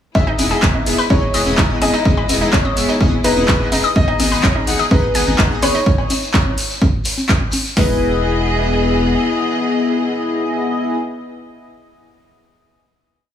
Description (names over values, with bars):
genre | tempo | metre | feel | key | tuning
progressive house | 126 BPM | 4/4 | straight | E major | A4 = 440 Hz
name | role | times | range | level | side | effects
dark concert grand piano | melody | 0.1-11.0 s | B4 to E5 | -23 LUFS | left 1 dB | digital delay
chorused polysynth | stabs | 0.1-11.0 s | B3 to F#5 | -21 LUFS | left 3 dB | sidechain pumping, digital delay
saturated sub bass | bass | 0.1-9.2 s | E1 to G#1 | -23 LUFS | equal | sidechain pumping
house drum kit | drums | 0.1-7.9 s | hi-hat, kick drum, snare drum | -17 LUFS | equal | none
rich studio string section | sustained chords | 0.2-11.0 s | E3 to D#5 | -23 LUFS | equal | sidechain pumping
shekere | percussion | 0.2-7.7 s | none | -26 LUFS | left 1 dB | none
analog pluck | arpeggios | 0.3-8.0 s | D#4 to G#5 | -23 LUFS | left 1 dB | chorus, sidechain pumping, digital delay
cowbell and congas | percussion | 0.3-7.6 s | none | -24 LUFS | left 1 dB | sidechain pumping on perc
deep house drum kit | drums | 0.4-7.6 s | handclaps, hi-hat | -21 LUFS | equal | overdrive, sidechain pumping on hats
room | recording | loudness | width
light reverb | small room ambience | -14 LUFS | side -9 dB against mid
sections
0.1-7.8 drop; 7.8-11.6 final chord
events
drop 0.1-7.8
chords
0.1 Emaj7; 4.0 G#m; 5.9 N.C.; 7.8 Emaj7